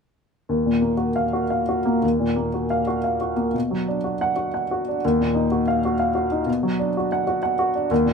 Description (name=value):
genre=neoclassical minimalist piano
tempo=108-128 BPM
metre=3/4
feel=rubato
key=Eb harmonic minor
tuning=A4 = 440 Hz
part: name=warm upright piano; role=solo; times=0.5-8.1 s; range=Eb2 to F#5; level=-20 LUFS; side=equal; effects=none
room=light reverb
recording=minimal, uncompressed stereo recording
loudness=-20 LUFS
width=side -5 dB against mid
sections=0.5-2.0 A section; 2.0-8.1 B section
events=none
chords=0.5 Ebmadd9; 3.5 Bm; 5.0 Ebmadd9; 6.5 Bm